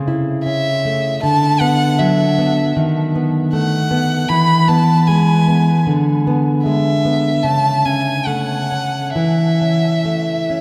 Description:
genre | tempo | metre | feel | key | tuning
romantic duo for violin and classical guitar | 66-80 BPM | 4/4 | rubato | A major | A4 = 440 Hz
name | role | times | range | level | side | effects
nylon-string guitar | accompaniment | 0.0-10.6 s | C#3 to E4 | -18 LUFS | equal | none
rich violin | melody | 0.4-10.6 s | E5 to B5 | -21 LUFS | equal | none
room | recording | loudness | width
wet cathedral reverb, RT60 6.3 s | in a vast, echoing space | -16 LUFS | mono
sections
0.0-10.6 A section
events
none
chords
0.0 A/C#; 1.2 Bm/D; 2.7 B7/D#; 4.3 E; 5.9 E7/D; 7.4 A/C#; 9.2 A/E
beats
0.44 1.22 1.99 | 2.75 3.52 4.28 5.08 | 5.87 6.66 7.45 8.28 | 9.16 10.05

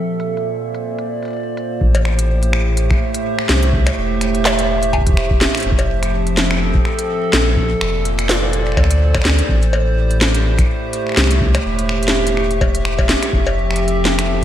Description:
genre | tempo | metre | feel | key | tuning
IDM | 125 BPM | 4/4 | swing 56% on 16ths | A phrygian | A4 = 443 Hz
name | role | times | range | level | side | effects
warbly tape-like pad | sustained chords | 0.0-14.4 s | A2 to E5 | -20 LUFS | right 1 dB | chorus, built-in reverb, vintage 12-bit sampler grit, sidechain pumping
organic electronic drum kit | drums | 0.2-14.3 s | cowbell, finger snaps, hi-hat, snare drum | -19 LUFS | equal | low-pass filter on hats, low-pass filter on perc, low-pass filter on snare, low-pass filter on room, gated reverb, ping-pong delay
warm sub bass | bass | 1.8-14.4 s | E1 to D2 | -18 LUFS | equal | none
electronic kick drum | drums | 1.8-13.4 s | none | -18 LUFS | equal | none
room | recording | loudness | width
light reverb, digital ambience | bright 1980s-style digital production | -14 LUFS | side -11 dB against mid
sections
0.0-1.8 A section; 1.8-14.4 B section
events
none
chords
0.0 Bbmaj7; 1.8 Am7; 5.7 Fmaj7; 7.6 Bbmaj7; 9.5 Am7; 13.3 Fmaj7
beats
0.37 0.85 1.33 | 1.81 2.29 2.77 3.25 | 3.73 4.21 4.69 5.17 | 5.65 6.13 6.61 7.09 | 7.57 8.05 8.53 9.01 | 9.49 9.97 10.45 10.93 | 11.41 11.89 12.37 12.85 | 13.33 13.81 14.29

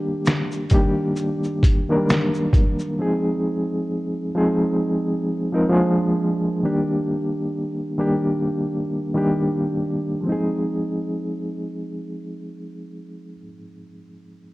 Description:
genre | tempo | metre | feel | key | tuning
lo-fi hip hop | 66 BPM | 4/4 | swing 57% on 16ths | F dorian | A4 = 441 Hz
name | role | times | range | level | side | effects
reed electric piano | accompaniment | 0.0-14.5 s | Eb3 to Bb4 | -21 LUFS | equal | fast tremolo, low-pass filter
trip hop sampler-style drum kit | drums | 0.3-3.0 s | finger snaps, hi-hat, kick drum, shaker, snare drum | -18 LUFS | equal | none
room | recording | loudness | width
moderate plate reverb, RT60 2.6 s | worn, warbling old tape, cassette tape, warbly pitch drift | -20 LUFS | side -19 dB against mid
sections
0.0-10.3 A section; 10.3-13.9 B section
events
none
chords
0.0 Ebmaj7; 3.0 Fm7; 5.7 Bb7; 6.6 Ebmaj7; 10.3 Fm7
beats
0.26 1.17 2.08 | 2.99 3.90 4.80 5.71 | 6.62 7.53 8.44 9.35 | 10.26 11.17 12.08 12.99

